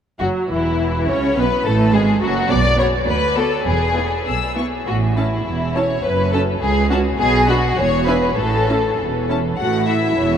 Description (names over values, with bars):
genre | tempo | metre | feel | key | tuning
quick classical-period movement for string orchestra | 103 BPM | 2/4 | rubato | A major | A4 = 440 Hz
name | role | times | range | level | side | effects
clear studio violin section | melody | 0.2-10.4 s | E4 to E6 | -28 LUFS | left 7 dB | none
rich symphonic violin section | second line | 0.2-10.4 s | E4 to D5 | -19 LUFS | left 3 dB | none
rich symphonic viola section | accompaniment | 0.2-10.4 s | E3 to F#4 | -23 LUFS | right 1 dB | none
clear symphonic cello section | bass | 0.2-10.4 s | C#2 to C#3 | -22 LUFS | right 4 dB | none
clear symphonic double bass section | bass | 0.2-10.4 s | E1 to D2 | -23 LUFS | right 3 dB | none
room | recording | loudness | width
wet huge ambient reverb, RT60 7.4 s | in a vast, echoing space | -15 LUFS | side -8 dB against mid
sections
0.2-9.6 A section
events
none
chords
0.2 C#madd11/E; 1.4 F#m; 2.5 Bm; 3.1 Bm/D; 3.7 E; 4.9 A; 6.0 F#m; 7.2 Bm; 7.8 E7(no3); 8.4 A